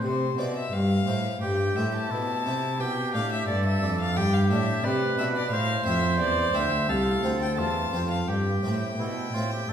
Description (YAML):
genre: classical, baroque-style sonata movement with continuo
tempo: 87 BPM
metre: 4/4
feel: straight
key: C major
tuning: A4 = 440 Hz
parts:
  - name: warm violin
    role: melody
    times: 0.0-9.7 s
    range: C5 to A5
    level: -31 LUFS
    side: left 4 dB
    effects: none
  - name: clear oboe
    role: second line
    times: 0.0-9.7 s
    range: E4 to C5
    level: -30 LUFS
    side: right 3 dB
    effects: none
  - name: harpsichord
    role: accompaniment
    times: 0.0-9.7 s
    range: C2 to D5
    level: -29 LUFS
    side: left 1 dB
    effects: none
  - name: warm cello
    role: bass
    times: 0.0-9.7 s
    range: C2 to C3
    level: -28 LUFS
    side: right 1 dB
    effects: none
room: wet recital hall reverb, RT60 1.5 s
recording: heard from further back in the room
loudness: -23 LUFS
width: side -9 dB against mid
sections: 0.0-9.7 A section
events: none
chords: 0.0 C; 2.8 G; 5.5 F; 8.3 C/G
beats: | 0.03 0.72 1.41 2.11 | 2.80 3.48 4.17 4.85 | 5.53 6.21 6.89 7.58 | 8.28 8.98 9.69